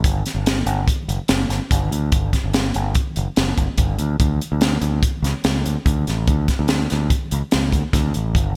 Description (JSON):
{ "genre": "math rock and midwest emo", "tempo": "144 BPM", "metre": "5/4", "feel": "straight", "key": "D major", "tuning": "A4 = 440 Hz", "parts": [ { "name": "growling fingered electric bass", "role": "bass", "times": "0.0-8.5 s", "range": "F#1 to D2", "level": "-23 LUFS", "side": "equal", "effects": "overdrive" }, { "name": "crisp fusion drum kit", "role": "drums", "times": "0.0-8.5 s", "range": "hi-hat, kick drum, snare drum", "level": "-22 LUFS", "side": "equal", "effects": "gated reverb" } ], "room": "light reverb", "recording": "bright 1980s-style digital production", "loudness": "-20 LUFS", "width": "mono", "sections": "0.0-8.6 A section", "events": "none", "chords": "none", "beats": "| 0.04 0.46 0.88 1.29 1.71 | 2.13 2.54 2.96 3.37 3.79 | 4.21 4.62 5.04 5.45 5.87 | 6.28 6.69 7.11 7.52 7.94 | 8.35" }